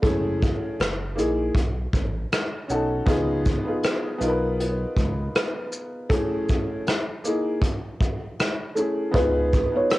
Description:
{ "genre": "lo-fi hip hop", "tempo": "79 BPM", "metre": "4/4", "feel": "swing 58% on 16ths", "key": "unclear", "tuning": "A4 = 441 Hz", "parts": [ { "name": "warm upright piano", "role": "accompaniment", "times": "0.0-10.0 s", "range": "A3 to B4", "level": "-25 LUFS", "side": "equal", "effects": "cassette tape" }, { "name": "smooth synth bass", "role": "bass", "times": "0.0-9.7 s", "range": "F#1 to C#2", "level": "-28 LUFS", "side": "equal", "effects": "none" }, { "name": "vintage brush drum kit", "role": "drums", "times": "0.0-10.0 s", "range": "hi-hat, kick drum, rim click, shaker", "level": "-24 LUFS", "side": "equal", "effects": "none" }, { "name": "felt-muted upright piano", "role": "melody", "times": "9.2-9.9 s", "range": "B4 to C#5", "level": "-22 LUFS", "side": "right 1 dB", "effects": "none" } ], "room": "light reverb", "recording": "home recording on cassette", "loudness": "-22 LUFS", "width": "side -17 dB against mid", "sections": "0.0-9.1 A section", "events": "none", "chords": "0.0 F#m9; 0.8 F#13; 1.5 B9; 3.1 C#9; 6.1 Amaj7; 6.9 Emaj7#11/A#; 7.6 Amaj7; 9.1 C#9" }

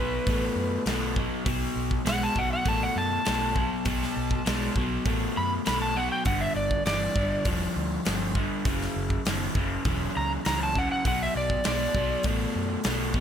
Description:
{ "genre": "blues rock power trio and southern rock", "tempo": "100 BPM", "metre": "4/4", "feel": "straight", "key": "B minor", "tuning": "A4 = 441 Hz", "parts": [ { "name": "overdriven slide guitar", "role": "melody", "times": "0.0-12.2 s", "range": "B4 to B5", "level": "-29 LUFS", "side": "equal", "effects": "analog delay" }, { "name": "crunchy overdriven guitar", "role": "riff", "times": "0.0-13.2 s", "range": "F#2 to A3", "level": "-29 LUFS", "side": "left 1 dB", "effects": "none" }, { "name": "vintage muted fingered electric bass", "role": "bass", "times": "0.0-13.2 s", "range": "E1 to F#2", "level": "-32 LUFS", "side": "equal", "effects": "none" }, { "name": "big rock drum kit", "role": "drums", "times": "0.3-13.2 s", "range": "hi-hat, kick drum, snare drum", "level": "-30 LUFS", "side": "equal", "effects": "none" } ], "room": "light reverb, small room ambience", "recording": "none", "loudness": "-24 LUFS", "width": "side -9 dB against mid", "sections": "0.0-13.2 A section", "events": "electric slide guitar solo 0.0-13.2", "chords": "0.0 B5; 6.3 G5; 8.7 F#5; 11.1 Bm7" }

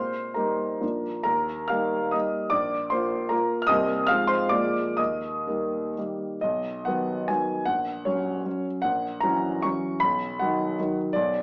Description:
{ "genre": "classical, romantic triple-time dance for piano with dotted rhythms", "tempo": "118-166 BPM", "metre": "3/4", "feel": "rubato", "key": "Eb major, B major from 6.4 s", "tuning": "A4 = 442 Hz", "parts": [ { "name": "warm concert grand piano", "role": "solo", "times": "0.0-11.4 s", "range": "Bb1 to F6", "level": "-23 LUFS", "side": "equal", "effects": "none" } ], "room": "moderate large studio reverb, RT60 1.3 s", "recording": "worn, warbling old tape, cassette tape, warbly pitch drift, small speaker sound", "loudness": "-23 LUFS", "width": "side -37 dB against mid", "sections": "0.0-6.4 A section; 6.4-11.4 B section", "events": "none", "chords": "0.0 Eb/Bb; 0.8 Bb; 1.3 Eb; 2.5 Bb; 3.7 Cm7; 4.1 Fm/Ab; 4.5 Bb7; 5.0 Eb; 6.4 B; 7.7 F#/A#; 8.8 F#7/A#; 10.0 B" }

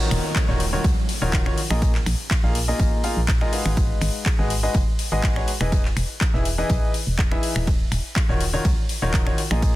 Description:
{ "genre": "piano house", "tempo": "123 BPM", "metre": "4/4", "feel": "straight", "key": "Eb minor", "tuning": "A4 = 440 Hz", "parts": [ { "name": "clear grand piano", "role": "riff", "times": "0.0-9.7 s", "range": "Eb3 to F5", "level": "-26 LUFS", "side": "left 2 dB", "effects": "sidechain pumping, dub echo" }, { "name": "downlifter", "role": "sound effects", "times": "0.0-3.8 s", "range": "none", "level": "-34 LUFS", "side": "right 3 dB", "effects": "none" }, { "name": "organ-like FM bass", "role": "bass", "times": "0.1-9.8 s", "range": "Eb1 to Db2", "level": "-24 LUFS", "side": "equal", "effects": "tube saturation, sidechain pumping" }, { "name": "house drum kit", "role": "drums", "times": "0.1-9.7 s", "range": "finger snaps, handclaps, hi-hat, ride cymbal", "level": "-29 LUFS", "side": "left 1 dB", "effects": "none" }, { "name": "loose indie drum kit", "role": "drums", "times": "0.1-9.7 s", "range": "hi-hat, snare drum", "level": "-39 LUFS", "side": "left 2 dB", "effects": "none" }, { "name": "electronic kick drum", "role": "drums", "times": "0.4-9.7 s", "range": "none", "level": "-22 LUFS", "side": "equal", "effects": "none" } ], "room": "studio ambience", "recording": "dense, heavily limited modern master", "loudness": "-19 LUFS", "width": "side -16 dB against mid", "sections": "0.0-9.8 A section", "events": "none", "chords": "0.0 Ebm9; 1.8 Bb7sus4; 3.5 Abm7; 5.7 Emaj7; 7.7 Ebm9" }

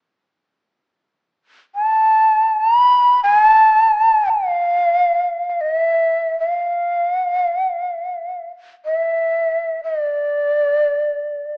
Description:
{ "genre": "japanese traditional, Japanese chamber music", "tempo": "free time", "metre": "none", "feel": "none", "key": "unclear", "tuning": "A4 = 440 Hz", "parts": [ { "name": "breathy shakuhachi", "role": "solo", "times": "1.8-11.6 s", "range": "D5 to B5", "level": "-14 LUFS", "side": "equal", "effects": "none" } ], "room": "moderate recital hall reverb, RT60 1.6 s", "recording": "small speaker sound", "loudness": "-14 LUFS", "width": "side -31 dB against mid", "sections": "0.5-11.6 A section", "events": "none", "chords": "none" }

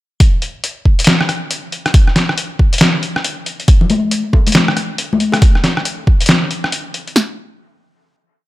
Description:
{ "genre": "dubstep", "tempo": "138 BPM", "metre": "4/4", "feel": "swing 62% on 16ths, half-time", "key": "none", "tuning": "none", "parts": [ { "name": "deep house drum kit", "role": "drums", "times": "0.2-7.3 s", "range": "kick drum, snare drum", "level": "-10 LUFS", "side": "equal", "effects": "overdrive, studio reverb" }, { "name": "trip hop sampler-style drum kit", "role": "drums", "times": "0.2-7.1 s", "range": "hi-hat, rim click, snare drum", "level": "-15 LUFS", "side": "equal", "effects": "studio reverb" }, { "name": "congas and bongos", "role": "percussion", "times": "3.8-5.4 s", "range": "none", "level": "-18 LUFS", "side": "left 3 dB", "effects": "dub echo" } ], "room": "little or no reverb", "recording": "none", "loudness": "-12 LUFS", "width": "side -17 dB against mid", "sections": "0.2-7.2 drop; 7.2-8.5 final hit", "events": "drop 0.2-7.2", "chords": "none" }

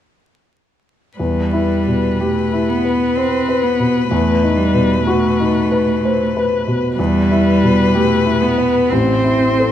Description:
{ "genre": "classical, slow romantic movement for piano trio", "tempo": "58-64 BPM", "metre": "3/4", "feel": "rubato", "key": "E minor", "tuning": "A4 = 440 Hz", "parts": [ { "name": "warm violin", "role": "melody", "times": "1.2-9.7 s", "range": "B4 to C5", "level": "-21 LUFS", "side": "left 6 dB", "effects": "none" }, { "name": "warm cello", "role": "second line", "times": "1.2-9.7 s", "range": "G3 to C4", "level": "-17 LUFS", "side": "right 1 dB", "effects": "none" }, { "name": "warm baby grand piano", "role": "accompaniment", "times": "1.2-9.7 s", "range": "A1 to C5", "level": "-17 LUFS", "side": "left 1 dB", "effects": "none" } ], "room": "wet recital hall reverb, RT60 1.4 s", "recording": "vinyl crackle", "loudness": "-13 LUFS", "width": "side -10 dB against mid", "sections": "1.2-9.7 A section", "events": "none", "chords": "1.2 Em; 4.1 B7/E; 7.0 Em; 8.9 Am" }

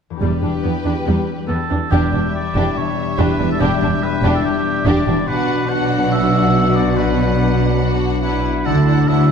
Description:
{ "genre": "cinematic, heroic adventure film score", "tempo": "142 BPM", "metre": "4/4", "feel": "straight", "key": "unclear", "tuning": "A4 = 440 Hz", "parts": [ { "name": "concert harp", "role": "arpeggios", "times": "0.1-9.3 s", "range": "E2 to G4", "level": "-24 LUFS", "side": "left 9 dB", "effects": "none" }, { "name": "warm symphonic violin section", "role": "melody", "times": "0.2-9.3 s", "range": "B4 to F#5", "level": "-30 LUFS", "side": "left 4 dB", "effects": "none" }, { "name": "warm symphonic violin section", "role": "second line", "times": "0.2-9.3 s", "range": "B3 to G4", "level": "-27 LUFS", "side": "left 3 dB", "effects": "none" }, { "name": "rich symphonic viola section", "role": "accompaniment", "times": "0.2-9.3 s", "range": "G3 to D4", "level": "-23 LUFS", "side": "right 1 dB", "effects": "none" }, { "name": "rich symphonic double bass section", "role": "bass", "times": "0.2-9.3 s", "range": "E1 to D2", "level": "-21 LUFS", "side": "right 3 dB", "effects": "none" }, { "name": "warm chamber cello section", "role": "bass", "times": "0.2-9.3 s", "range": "E2 to D3", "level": "-20 LUFS", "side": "right 3 dB", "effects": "none" }, { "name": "warm oboe", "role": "second line", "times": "1.5-9.3 s", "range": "G4 to F#5", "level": "-23 LUFS", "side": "right 1 dB", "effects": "none" }, { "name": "mellow French horn section", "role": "sustained chords", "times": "1.9-9.3 s", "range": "F#3 to E4", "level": "-24 LUFS", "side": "left 6 dB", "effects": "none" } ], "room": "moderate scoring stage reverb, RT60 2.1 s", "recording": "dark, warm production", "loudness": "-15 LUFS", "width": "side -6 dB against mid", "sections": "0.2-1.9 A section; 1.9-9.3 B section", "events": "none", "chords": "0.2 Em7; 5.3 Bm; 8.7 Dadd9" }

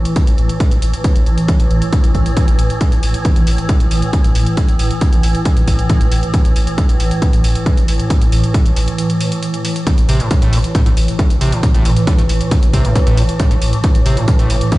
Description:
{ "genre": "driving peak-time techno", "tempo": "136 BPM", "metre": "4/4", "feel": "straight", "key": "unclear", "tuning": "A4 = 440 Hz", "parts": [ { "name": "warm sub bass", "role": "bass", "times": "0.0-14.6 s", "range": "A1", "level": "-17 LUFS", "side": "equal", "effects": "tube saturation, sidechain pumping, low-pass filter" }, { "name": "swarming drone", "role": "drone", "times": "0.0-14.8 s", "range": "A2 to E3", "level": "-19 LUFS", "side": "equal", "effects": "built-in reverb, sidechain pumping" }, { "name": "electronic hi-hat", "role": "drums", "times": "0.1-14.8 s", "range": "none", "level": "-27 LUFS", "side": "right 1 dB", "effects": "none" }, { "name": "electronic kick drum", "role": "drums", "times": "0.2-14.8 s", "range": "none", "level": "-14 LUFS", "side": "equal", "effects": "none" }, { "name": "overdriven acid bass", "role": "riff", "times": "9.9-14.8 s", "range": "A2 to C3", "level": "-19 LUFS", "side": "equal", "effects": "distortion, analog chorus, sidechain pumping, digital delay" } ], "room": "little or no reverb", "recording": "played on a big sound system in a bare room, stone room reverb, nothing above 10.9 kHz", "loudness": "-12 LUFS", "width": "side -19 dB against mid", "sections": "0.0-14.8 A section", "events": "break 9.0-9.9", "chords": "0.0 A5" }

